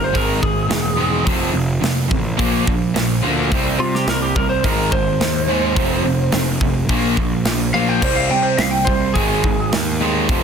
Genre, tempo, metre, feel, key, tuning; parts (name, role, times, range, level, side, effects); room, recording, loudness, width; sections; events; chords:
hard rock; 106 BPM; 4/4; straight; A4 = 442 Hz
lightly driven lead guitar; melody; 0.0-9.7 s; F4 to G5; -21 LUFS; right 1 dB; digital delay
crunchy overdriven guitar; riff; 0.0-10.4 s; F2 to C4; -24 LUFS; left 11 dB
overdriven electric guitar; riff; 0.0-10.4 s; F2 to C4; -22 LUFS; right 11 dB
fuzz picked electric bass; bass; 0.0-10.4 s; E1 to C3; -22 LUFS; equal; overdrive
tight metal drum kit; drums; 0.1-10.4 s; crash cymbal, hi-hat, kick drum, snare drum; -21 LUFS; equal
light reverb, studio ambience; dense, heavily limited modern master; -15 LUFS; side -7 dB against mid
0.0-10.4 A section
lead electric guitar solo 0.0-10.4
0.1 Ab5; 1.3 F; 2.4 Bb; 3.5 C5; 4.6 Ab; 5.8 F5; 6.9 Bb5; 8.0 C5; 9.2 Ab5